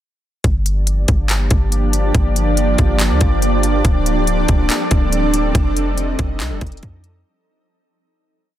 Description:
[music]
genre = hip hop, atmospheric cloud-rap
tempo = 141 BPM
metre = 4/4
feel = half-time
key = G minor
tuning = A4 = 444 Hz
[part]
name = shimmering ambient pad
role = sustained chords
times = 1.0-7.2 s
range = F3 to Eb5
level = -19 LUFS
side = right 1 dB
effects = chorus, built-in reverb
[part]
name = clean 808-style bass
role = bass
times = 0.4-7.2 s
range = D1 to F2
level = -18 LUFS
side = equal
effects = none
[part]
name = trap drum kit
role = drums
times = 0.4-7.1 s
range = handclaps, hi-hat, kick drum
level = -18 LUFS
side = equal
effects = none
[sound]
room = digital ambience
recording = dense, heavily limited modern master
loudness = -14 LUFS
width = side -12 dB against mid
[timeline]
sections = 0.4-7.3 verse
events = fade-out 5.5-7.3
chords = 0.4 Gm7; 3.8 D7sus4; 5.5 F7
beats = | 0.44 0.87 1.29 1.72 | 2.15 2.57 3.00 3.42 | 3.85 4.27 4.70 5.12 | 5.55 5.97 6.40 6.83

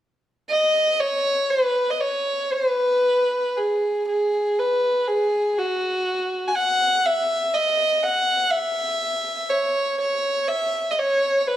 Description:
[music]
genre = celtic folk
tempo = 40 BPM (dotted quarters)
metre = 6/8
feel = rubato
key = E major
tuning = A4 = 440 Hz
[part]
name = dark fiddle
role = solo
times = 0.5-11.6 s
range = F#4 to G#5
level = -19 LUFS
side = equal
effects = slapback echo
[sound]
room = wet recital hall reverb, RT60 1.6 s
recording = none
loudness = -19 LUFS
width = side -12 dB against mid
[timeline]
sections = 0.0-2.5 A section; 2.5-11.6 B section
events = none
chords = none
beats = 0.97 | 2.49 4.04 | 5.55 7.04 | 8.52 10.00 | 11.51

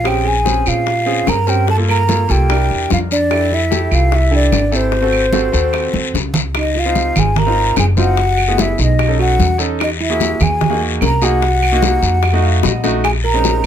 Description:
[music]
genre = Afro-Cuban jazz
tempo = 148 BPM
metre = 4/4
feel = straight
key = unclear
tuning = A4 = 437 Hz
[part]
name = breathy mellow concert flute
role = melody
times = 0.0-13.7 s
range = C5 to A#5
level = -18 LUFS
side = left 1 dB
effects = none
[part]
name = bell-like tine electric piano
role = second line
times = 0.0-13.6 s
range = C4 to Bb4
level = -23 LUFS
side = right 5 dB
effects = none
[part]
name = clear baby grand piano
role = accompaniment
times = 0.0-13.7 s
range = Ab3 to F5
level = -21 LUFS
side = right 2 dB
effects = none
[part]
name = upright bass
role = bass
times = 0.0-13.6 s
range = Gb1 to Bb2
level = -17 LUFS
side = equal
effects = none
[part]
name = bongos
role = percussion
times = 0.1-13.7 s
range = none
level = -24 LUFS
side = left 10 dB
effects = none
[part]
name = claves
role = percussion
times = 0.1-13.7 s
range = none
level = -26 LUFS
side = right 8 dB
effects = none
[part]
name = congas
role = percussion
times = 0.1-13.6 s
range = none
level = -22 LUFS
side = right 1 dB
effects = none
[part]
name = guiro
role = percussion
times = 0.1-13.7 s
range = none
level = -24 LUFS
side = left 7 dB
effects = none
[sound]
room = little or no reverb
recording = close, detailed microphones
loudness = -12 LUFS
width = side -9 dB against mid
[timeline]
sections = 0.0-6.6 A section; 6.6-13.7 B section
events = drum fill 5.9-6.6, 12.6-13.0; grand piano fill 12.2-13.0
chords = 0.1 Bbm9; 1.7 Gm7; 2.5 C7; 3.3 Fmaj7; 4.9 Ab7b9; 6.6 Dbmaj9; 8.2 Gbm11; 9.0 Cb9; 9.8 Emaj9#11; 11.4 Cm7b5; 12.2 F7b9; 13.0 Bbm11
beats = | 0.05 0.46 0.87 1.27 | 1.68 2.09 2.49 2.90 | 3.31 3.71 4.12 4.52 | 4.93 5.34 5.74 6.15 | 6.55 6.96 7.36 7.77 | 8.18 8.58 8.98 9.39 | 9.79 10.20 10.61 11.01 | 11.42 11.82 12.23 12.63 | 13.04 13.44

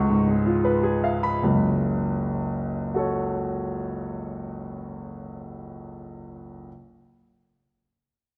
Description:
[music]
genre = classical, virtuoso piano study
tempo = 79 BPM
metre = 4/4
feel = rubato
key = F# minor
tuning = A4 = 440 Hz
[part]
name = warm baby grand piano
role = solo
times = 0.0-6.7 s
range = F#1 to B5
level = -26 LUFS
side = equal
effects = none
[sound]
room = moderate scoring stage reverb, RT60 1.8 s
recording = none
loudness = -25 LUFS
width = mono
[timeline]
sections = 0.0-1.4 A section; 1.4-4.5 B section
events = slowing down 0.0-1.4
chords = 0.0 C#7; 1.4 F#m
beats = 0.64 | 1.41 2.18 2.94 3.70

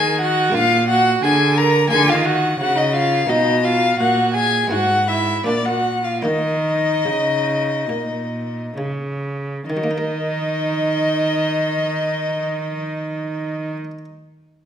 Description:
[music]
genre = classical, baroque-style sonata movement with continuo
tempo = 64-88 BPM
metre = 4/4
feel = straight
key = Eb minor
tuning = A4 = 440 Hz
[part]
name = warm violin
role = melody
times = 0.0-13.7 s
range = D5 to Bb5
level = -20 LUFS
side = left 5 dB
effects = none
[part]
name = dark violin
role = second line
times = 0.0-13.8 s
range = D4 to Bb4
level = -22 LUFS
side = right 5 dB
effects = none
[part]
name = buff-stop harpsichord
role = accompaniment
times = 0.0-14.0 s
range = G#2 to Bb4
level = -26 LUFS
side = equal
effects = none
[part]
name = rich cello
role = bass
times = 0.0-13.8 s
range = G#2 to Eb3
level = -22 LUFS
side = right 1 dB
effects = none
[sound]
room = wet recital hall reverb, RT60 1.4 s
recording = none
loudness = -17 LUFS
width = side -9 dB against mid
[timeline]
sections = 0.0-9.7 A section; 9.7-13.4 B section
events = slowing down 1.9-9.7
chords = 0.0 Eb5; 0.5 Bb7; 1.9 Eb5; 3.3 B5; 4.7 E/G#; 5.5 Bb5; 6.2 Eb5; 9.7 Ebm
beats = | 0.55 1.23 1.91 2.60 | 3.29 4.00 4.72 5.47 | 6.25 7.05 7.89 8.77 | 9.69 10.62 11.54 12.47

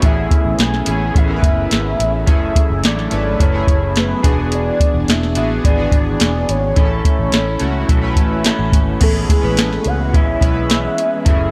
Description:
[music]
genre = indie pop, bedroom pop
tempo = 107 BPM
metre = 4/4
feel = straight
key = A major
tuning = A4 = 440 Hz
[part]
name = chorused retro synth keys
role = accompaniment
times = 0.0-11.5 s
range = A3 to B4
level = -26 LUFS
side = equal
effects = cassette tape
[part]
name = electric guitar through a small old amp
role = accompaniment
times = 0.0-11.5 s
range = F#2 to A4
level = -26 LUFS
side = equal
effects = lush chorus, warbly pitch drift
[part]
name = phased string machine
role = sustained chords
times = 0.0-11.5 s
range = E3 to G#4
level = -32 LUFS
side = equal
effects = none
[part]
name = vintage muted fingered electric bass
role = bass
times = 0.0-11.5 s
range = E1 to C#2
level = -23 LUFS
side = equal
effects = none
[part]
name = soft vintage rhythm box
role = drums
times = 0.0-11.4 s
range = crash cymbal, hi-hat, kick drum, snare drum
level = -18 LUFS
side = equal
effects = none
[part]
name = soft octave-layered synth lead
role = melody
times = 0.1-11.5 s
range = G#4 to G#5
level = -24 LUFS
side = equal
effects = phaser, analog chorus, slapback echo
[sound]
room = digital ambience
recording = none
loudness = -16 LUFS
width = mono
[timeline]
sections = 0.0-9.0 A section; 9.0-11.5 B section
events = none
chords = 0.0 Amaj7; 2.3 F#m7; 4.2 E7; 6.8 A; 9.0 Amaj7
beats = | 0.03 0.59 1.15 1.72 | 2.28 2.84 3.40 3.96 | 4.52 5.08 5.64 6.21 | 6.77 7.33 7.89 8.45 | 9.01 9.57 10.13 10.70 | 11.26

